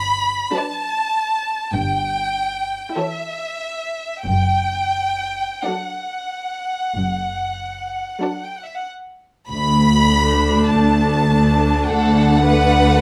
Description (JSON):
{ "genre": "classical, slow romantic movement for string orchestra", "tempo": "43-54 BPM", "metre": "4/4", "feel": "rubato", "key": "D major", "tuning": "A4 = 440 Hz", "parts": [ { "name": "rich chamber violin section", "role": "melody", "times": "0.0-13.0 s", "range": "E5 to B5", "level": "-23 LUFS", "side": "equal", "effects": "none" }, { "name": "rich chamber cello section", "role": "bass", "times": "0.0-12.9 s", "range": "D2 to G2", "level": "-22 LUFS", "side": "equal", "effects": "none" }, { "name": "rich chamber double bass section", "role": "bass", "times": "0.0-12.9 s", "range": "F#1 to D2", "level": "-24 LUFS", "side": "equal", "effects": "none" }, { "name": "rich chamber viola section", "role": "accompaniment", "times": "0.5-13.0 s", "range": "E3 to E4", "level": "-24 LUFS", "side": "equal", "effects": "none" }, { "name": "clear chamber violin section", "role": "second line", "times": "0.6-13.0 s", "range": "A4 to D5", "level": "-25 LUFS", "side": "equal", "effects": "none" } ], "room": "light reverb", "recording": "none", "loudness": "-19 LUFS", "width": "mono", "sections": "0.0-9.5 A section; 9.5-13.0 A section", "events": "none", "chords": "0.0 Gmaj7; 1.7 A7/G; 4.3 D/F#; 9.5 D" }